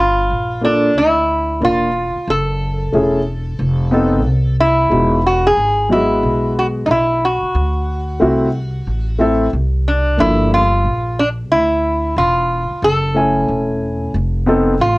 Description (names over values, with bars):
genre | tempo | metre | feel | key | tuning
hip hop | 91 BPM | 4/4 | swing 63% on 16ths | unclear | A4 = 440 Hz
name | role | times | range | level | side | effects
lap resonator guitar | melody | 0.0-15.0 s | D4 to A4 | -16 LUFS | equal | none
upright bass | bass | 0.0-15.0 s | E1 to D2 | -19 LUFS | equal | none
dark grand piano | accompaniment | 0.6-14.7 s | F3 to Ab5 | -16 LUFS | left 1 dB | none
room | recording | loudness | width
light reverb | worn, warbling old tape, cassette tape, warbly pitch drift | -13 LUFS | side -22 dB against mid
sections
0.0-10.2 A section; 10.2-15.0 A section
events
none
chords
0.0 Gm7; 2.3 F#m7; 3.6 F7#11; 4.9 Emaj7; 7.6 D7; 10.2 Gm7; 12.8 F#m7; 14.1 F7#11